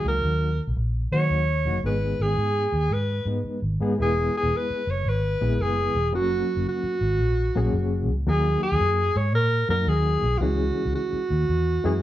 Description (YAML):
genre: uptempo 1960s-style soul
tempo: 112 BPM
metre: 4/4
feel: swing 66% on 8ths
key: unclear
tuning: A4 = 436 Hz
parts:
  - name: bright alto saxophone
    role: melody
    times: 0.0-12.0 s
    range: E#4 to C#5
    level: -25 LUFS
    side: right 1 dB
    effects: none
  - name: barky reed electric piano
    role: accompaniment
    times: 0.0-12.0 s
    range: E3 to G#5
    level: -29 LUFS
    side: left 2 dB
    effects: overdrive, fast tremolo
  - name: vintage muted fingered electric bass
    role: bass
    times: 0.0-12.0 s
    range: E1 to D#3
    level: -24 LUFS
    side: equal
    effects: none
room: moderate large studio reverb, RT60 0.8 s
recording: band playing live in one room, cassette tape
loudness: -21 LUFS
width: side -13 dB against mid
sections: 0.0-4.0 A section; 4.0-12.0 B section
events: alto saxophone solo 0.0-4.0; reed electric piano fill 11.5-12.0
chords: 0.0 D#m; 1.8 G#m; 4.0 E; 6.1 F#; 8.3 D#m; 10.4 C#m